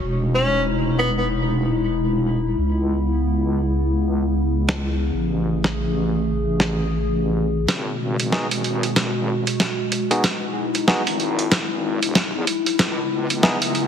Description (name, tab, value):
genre	glitch hop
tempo	94 BPM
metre	4/4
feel	swing 60% on 16ths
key	unclear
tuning	A4 = 439 Hz
part	warbly tape-like pad	sustained chords	0.0-13.9 s	B2 to G#4	-24 LUFS	left 2 dB	chorus, built-in reverb, vintage 12-bit sampler grit
part	wobble bass	bass	0.0-13.9 s	E1 to E2	-23 LUFS	equal	chorus, high-pass filter
part	warm tenor saxophone	melody	0.3-1.3 s	B3 to C#4	-24 LUFS	equal	tape echo
part	boom bap sampler-style drum kit	drums	4.7-13.9 s	hi-hat, snare drum	-22 LUFS	right 1 dB	studio reverb
part	overdriven tine electric piano	stabs	8.3-13.6 s	B3 to G#4	-25 LUFS	equal	vintage 12-bit sampler grit, tape echo
room	moderate lush hall reverb, RT60 2.5 s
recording	heavily compressed radio sound, multiband compression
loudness	-19 LUFS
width	side -8 dB against mid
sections	0.0-7.7 A section; 7.7-13.9 B section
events	build-up 7.7-13.9; drum fill 7.7-13.9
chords	0.0 Emaj7; 2.6 C#m7; 5.1 Amaj7; 7.7 G#m7; 10.2 Emaj7; 12.8 C#m7